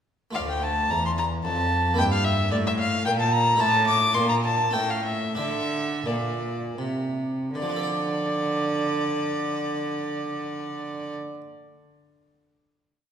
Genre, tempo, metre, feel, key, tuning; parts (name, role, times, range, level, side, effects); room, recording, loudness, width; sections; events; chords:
classical, baroque-style sonata movement with continuo; 77-113 BPM; 3/4; rubato; D minor; A4 = 442 Hz
warm violin; melody; 0.3-11.1 s; D5 to D6; -25 LUFS; left 1 dB
harpsichord; accompaniment; 0.3-11.4 s; D2 to E5; -31 LUFS; equal
rich cello; bass; 0.4-11.1 s; D2 to D3; -27 LUFS; right 1 dB
wet recital hall reverb, RT60 1.7 s; recorded in a church or concert hall; -22 LUFS; side -8 dB against mid
0.4-7.6 A section; 7.6-12.2 final chord
slowing down 2.8-7.6
0.4 Dm; 2.0 Edim/G; 3.6 A; 4.2 Bb; 4.7 A; 5.4 D5; 7.6 Dm